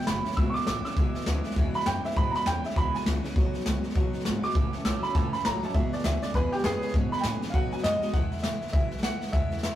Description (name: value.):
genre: rockabilly.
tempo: 201 BPM.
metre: 4/4.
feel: swing 60% on 8ths.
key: E major.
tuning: A4 = 441 Hz.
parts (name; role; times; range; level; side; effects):
clear upright piano; melody; 0.0-9.8 s; B3 to E6; -30 LUFS; right 1 dB; none.
picked steel-string acoustic guitar; accompaniment; 0.0-9.8 s; E2 to A4; -37 LUFS; left 1 dB; none.
electric guitar through a small old amp; riff; 0.0-8.1 s; E2 to G#3; -34 LUFS; equal; none.
jazz brush drum kit; drums; 0.0-9.7 s; hi-hat, kick drum, snare drum; -28 LUFS; equal; none.
upright bass; bass; 0.1-9.7 s; F#1 to B2; -33 LUFS; equal; none.
room: moderate stone room reverb, RT60 1.3 s.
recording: rough rehearsal-room recording, warm saturation.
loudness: -25 LUFS.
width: side -12 dB against mid.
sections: 0.0-8.1 A section; 8.1-9.8 B section.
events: upright piano solo 0.0-8.1.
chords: 0.0 E; 3.4 B; 4.6 A; 5.8 E; 7.5 B; 8.1 E.